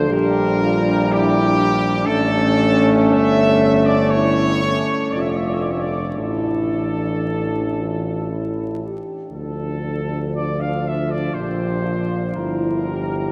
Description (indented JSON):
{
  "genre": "classical, hymn-like piece for brass band",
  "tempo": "59 BPM",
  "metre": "3/4",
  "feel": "uneven beats, rubato",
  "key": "unclear",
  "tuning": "A4 = 440 Hz",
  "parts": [
    { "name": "mellow trumpet section", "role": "melody", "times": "0.0-13.3 s", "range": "G4 to F5", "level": "-26 LUFS", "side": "equal", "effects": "none" },
    { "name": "mellow French horn section", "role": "second line", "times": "0.0-13.3 s", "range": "C#4 to A4", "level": "-26 LUFS", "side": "equal", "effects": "none" },
    { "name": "mellow euphonium", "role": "accompaniment", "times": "0.0-13.3 s", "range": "C#4 to E4", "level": "-29 LUFS", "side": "equal", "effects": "none" },
    { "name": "mellow trombone", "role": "accompaniment", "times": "0.0-13.3 s", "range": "E3 to A3", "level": "-25 LUFS", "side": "equal", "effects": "none" },
    { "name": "clear tuba", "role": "bass", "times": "0.0-13.3 s", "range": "F1 to D2", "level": "-26 LUFS", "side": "equal", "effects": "none" }
  ],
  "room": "wet cathedral reverb, RT60 5.3 s",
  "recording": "vinyl crackle",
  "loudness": "-19 LUFS",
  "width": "mono",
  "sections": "0.0-13.3 A section",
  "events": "none",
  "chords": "0.1 Gm/Bb; 2.1 A; 3.1 A7/G; 5.1 Dm/F; 6.2 Asus4; 8.3 A; 9.3 Dm; 11.3 Bb; 12.3 Edim/G",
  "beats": "| 0.10 1.09 2.07 | 3.11 4.11 5.12 | 6.16 7.22 8.27 | 9.31 10.33 11.33 | 12.34"
}